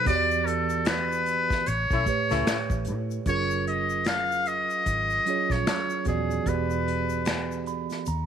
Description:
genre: R&B, neo-soul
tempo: 75 BPM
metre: 4/4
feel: swing 60% on 16ths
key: unclear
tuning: A4 = 445 Hz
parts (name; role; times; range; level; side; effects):
- trumpet with metal mute; melody; 0.0-7.7 s; G#4 to E#5; -26 LUFS; left 2 dB; slapback echo
- mellow tine electric piano; accompaniment; 0.0-8.3 s; A2 to B5; -30 LUFS; right 8 dB; medium stereo tremolo
- vintage muted fingered electric bass; bass; 0.1-8.3 s; Eb1 to A2; -32 LUFS; left 1 dB; none
- unplugged drum kit; drums; 0.1-8.3 s; finger snaps, hi-hat, kick drum, snare drum; -29 LUFS; left 1 dB; none
- egg shaker and finger snaps; percussion; 0.1-8.3 s; none; -43 LUFS; left 16 dB; none
- warm horn section; stabs; 1.9-2.6 s; A3 to E4; -31 LUFS; left 13 dB; none
room: light reverb, studio ambience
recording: 1960s-style stereo with parts hard left and right, vinyl crackle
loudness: -24 LUFS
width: side -8 dB against mid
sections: 0.0-3.3 A section; 3.3-8.3 B section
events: band accent 0.1-3.3; tine electric piano fill 7.3-8.3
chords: 0.1 Em9; 1.7 A7; 3.3 F#maj9; 6.5 Em7

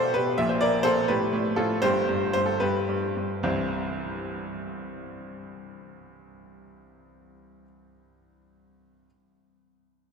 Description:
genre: classical-period piano sonatina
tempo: 70-86 BPM (dotted quarters)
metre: 6/8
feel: straight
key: C major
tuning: A4 = 440 Hz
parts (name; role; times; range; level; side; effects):
- bright baby grand piano; solo; 0.0-9.1 s; G1 to E5; -24 LUFS; equal; none
room: wet cathedral reverb, RT60 5.5 s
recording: in a vast, echoing space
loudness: -23 LUFS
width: side -6 dB against mid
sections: 0.0-3.4 A section; 3.4-6.8 B section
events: slowing down 0.0-3.4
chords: 0.4 Bbmaj9#11; 1.1 F/A; 1.8 N.C.; 3.4 C

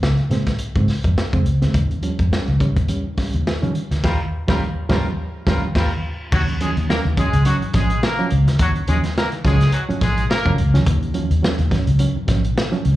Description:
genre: funk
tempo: 105 BPM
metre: 4/4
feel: swing 56% on 16ths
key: unclear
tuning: A4 = 442 Hz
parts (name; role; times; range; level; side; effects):
- reed electric piano; stabs; 0.0-12.9 s; Bb2 to Db4; -25 LUFS; right 4 dB; fast tremolo, slapback echo
- vintage muted fingered electric bass; bass; 0.0-13.0 s; Gb1 to Eb3; -18 LUFS; equal; none
- crunchy breakbeat drum kit; drums; 0.0-13.0 s; crash cymbal, hi-hat, kick drum, snare drum; -23 LUFS; equal; none
- clear horn section; second line; 4.0-10.5 s; Gb3 to Bb4; -25 LUFS; left 1 dB; slapback echo
room: little or no reverb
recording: live gig heard through the venue's PA, club reverb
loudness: -16 LUFS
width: side -15 dB against mid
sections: 0.0-6.3 A section; 6.3-13.0 B section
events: band accent 4.0-6.3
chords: 0.0 Bbm7; 1.7 Eb9; 6.3 Ebm9

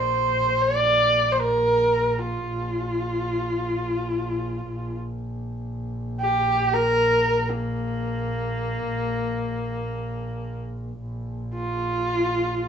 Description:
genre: mongolian traditional, Mongolian folk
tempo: free time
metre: none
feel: none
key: Bb gong mode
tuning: A4 = 440 Hz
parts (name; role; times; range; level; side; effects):
- rich horsehead fiddle; melody; 0.0-12.7 s; Bb3 to D5; -22 LUFS; equal; none
- warm double bass; drone; 0.0-12.7 s; Bb1; -29 LUFS; equal; none
room: moderate studio reverb, RT60 0.7 s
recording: band playing live in one room, nothing above 7.8 kHz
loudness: -22 LUFS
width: side -8 dB against mid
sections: 0.0-11.0 A section; 11.0-12.7 A section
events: none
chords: none

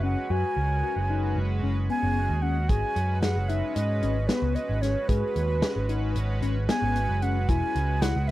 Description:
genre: progressive instrumental, band music in an uneven meter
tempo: 225 BPM (eighths)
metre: 9/8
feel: straight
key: unclear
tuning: A4 = 440 Hz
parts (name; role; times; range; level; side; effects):
- breathy bright concert flute; melody; 0.0-8.3 s; B4 to G#5; -30 LUFS; right 3 dB; none
- chorused pulse-width pad; accompaniment; 0.0-8.3 s; G#3 to B4; -34 LUFS; right 2 dB; none
- tine electric piano; arpeggios; 0.0-8.3 s; B3 to G#4; -32 LUFS; left 8 dB; medium stereo tremolo
- picked electric bass; bass; 0.0-8.3 s; E1 to G#2; -26 LUFS; equal; none
- warm soul drum kit; drums; 2.7-8.3 s; hi-hat, kick drum, snare drum; -28 LUFS; equal; none
room: little or no reverb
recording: dry, close 1970s-style studio recording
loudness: -24 LUFS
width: side -15 dB against mid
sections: 0.0-8.3 A section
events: none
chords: 0.0 F#sus2; 2.7 G#m; 7.5 E

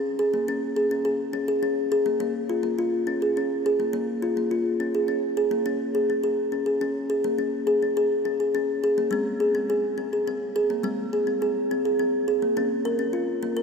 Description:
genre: world meditative, meditative tuned percussion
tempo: 70 BPM (dotted quarters)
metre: 6/8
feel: straight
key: Bb minor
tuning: A4 = 440 Hz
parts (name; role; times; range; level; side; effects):
- kalimba; solo; 0.0-13.6 s; Ab3 to Bb4; -22 LUFS; equal; tape echo
room: wet cathedral reverb, RT60 6.0 s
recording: in a vast, echoing space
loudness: -22 LUFS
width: side -5 dB against mid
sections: 0.0-12.6 A section; 12.6-13.6 B section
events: none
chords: 0.0 Db5; 2.2 Bbm; 5.7 Db5; 9.1 Ab; 12.6 Bbm

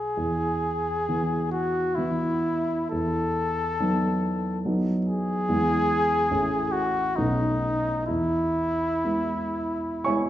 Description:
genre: classical, romantic duo for trumpet and grand piano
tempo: 56-74 BPM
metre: 3/4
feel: rubato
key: E major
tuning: A4 = 440 Hz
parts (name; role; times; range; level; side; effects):
- warm trumpet; melody; 0.0-10.3 s; D#4 to A4; -26 LUFS; left 1 dB; none
- dark grand piano; accompaniment; 0.0-10.3 s; A1 to C#6; -26 LUFS; right 1 dB; none
room: wet recital hall reverb, RT60 1.6 s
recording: heard from further back in the room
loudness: -23 LUFS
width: side -12 dB against mid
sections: 0.0-10.3 A section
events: none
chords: 0.2 E; 2.9 B7/E; 5.5 E; 6.3 Amaj7; 7.2 B9; 8.1 E

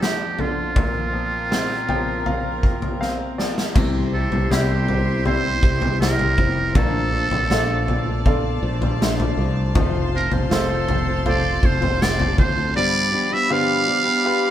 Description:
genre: pop ballad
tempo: 80 BPM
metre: 4/4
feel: straight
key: unclear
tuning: A4 = 440 Hz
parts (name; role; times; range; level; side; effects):
- trumpet with metal mute; melody; 0.0-14.5 s; F4 to F5; -23 LUFS; right 3 dB; none
- bright grand piano; accompaniment; 0.0-14.5 s; F2 to G5; -28 LUFS; left 1 dB; none
- warm studio string section; sustained chords; 0.0-14.5 s; F2 to C6; -30 LUFS; left 2 dB; none
- huge arena drum kit; drums; 0.0-12.6 s; crash cymbal, kick drum, snare drum, toms; -22 LUFS; equal; none
- fingerpicked plugged-in steel-string acoustic guitar; arpeggios; 3.8-14.5 s; F2 to G4; -26 LUFS; left 2 dB; none
- fretless electric bass; bass; 3.8-12.7 s; F1 to D2; -24 LUFS; equal; none
room: moderate stone room reverb, RT60 1.0 s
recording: band playing live in one room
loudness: -18 LUFS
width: side -11 dB against mid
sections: 0.0-3.8 A section; 3.8-14.5 B section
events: grand piano fill 1.5-3.8, 14.3; drum fill 3.0-3.8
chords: 0.0 Dm/F; 0.8 Bbsus2; 3.8 C; 6.8 Bbmaj7; 9.8 F; 12.8 G7

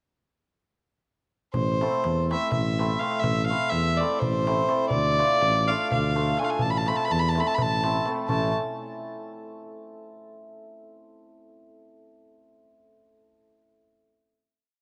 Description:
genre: balkan folk, Balkan wedding band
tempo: 249 BPM (eighths)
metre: 7/8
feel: straight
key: A minor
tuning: A4 = 440 Hz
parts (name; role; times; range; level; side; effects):
- dark fiddle; melody; 1.5-8.5 s; C5 to B5; -28 LUFS; equal; none
- dark tuba; bass; 1.5-8.5 s; A1 to E2; -30 LUFS; equal; none
- darbuka; percussion; 1.5-8.5 s; none; -36 LUFS; equal; none
- cimbalom; accompaniment; 1.8-8.5 s; A3 to A4; -32 LUFS; equal; none
room: moderate plate reverb, RT60 3.0 s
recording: none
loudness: -25 LUFS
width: mono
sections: 1.5-8.3 A section; 8.3-10.0 final chord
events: none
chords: 1.5 Am; 4.9 Dm; 6.6 Am; 8.3 A

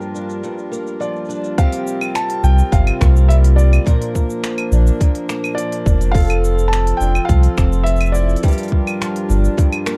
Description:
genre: folktronica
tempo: 105 BPM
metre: 4/4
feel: straight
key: unclear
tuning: A4 = 440 Hz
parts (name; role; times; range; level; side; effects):
- felt-muted upright piano; melody; 0.0-8.7 s; Bb4 to A5; -27 LUFS; equal; delay, plate reverb
- hand-pumped harmonium; sustained chords; 0.0-10.0 s; F3 to Bb4; -28 LUFS; equal; plate reverb
- picked twelve-string acoustic guitar; arpeggios; 0.0-10.0 s; G2 to Bb4; -27 LUFS; equal; plate reverb
- organic electronic drum kit; drums; 0.0-10.0 s; claves, finger snaps, hi-hat, shaker; -30 LUFS; equal; low-pass filter on perc, low-pass filter on hats, low-pass filter on snare, low-pass filter on room
- electronic kick drum; drums; 1.6-9.7 s; none; -17 LUFS; equal; none
- warm sub bass; bass; 2.4-9.5 s; F1 to C2; -16 LUFS; equal; none
room: little or no reverb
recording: dark, warm production, vinyl crackle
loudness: -16 LUFS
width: mono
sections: 0.0-1.6 A section; 1.6-10.0 B section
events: none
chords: 0.0 Gm7; 1.6 C7sus4; 3.9 Bb; 6.2 Fmaj7; 8.4 Gm7

